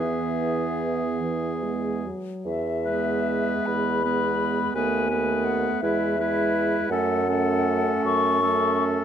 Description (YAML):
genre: classical, slow romantic movement for wind quintet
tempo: 47-58 BPM (dotted quarters)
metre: 6/8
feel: rubato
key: E major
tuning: A4 = 440 Hz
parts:
  - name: hollow concert flute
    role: melody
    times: 0.0-8.8 s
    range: E5 to C#6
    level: -27 LUFS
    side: left 7 dB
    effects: none
  - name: clear oboe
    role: second line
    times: 0.0-9.0 s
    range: G#4 to B4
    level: -30 LUFS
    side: left 4 dB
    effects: none
  - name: clear clarinet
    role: accompaniment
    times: 0.0-9.0 s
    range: B3 to E4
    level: -29 LUFS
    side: right 10 dB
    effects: none
  - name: warm French horn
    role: accompaniment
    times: 0.0-9.0 s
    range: E3 to A3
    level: -30 LUFS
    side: right 1 dB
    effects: none
  - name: mellow bassoon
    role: bass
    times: 0.0-9.0 s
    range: D#2 to F#2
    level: -27 LUFS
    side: right 3 dB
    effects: none
room: moderate recital hall reverb, RT60 1.2 s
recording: close, detailed microphones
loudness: -22 LUFS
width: side -8 dB against mid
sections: 0.0-2.5 A section; 2.5-9.0 B section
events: none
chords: 0.0 E; 4.8 B7/D#; 5.8 E; 6.9 F#m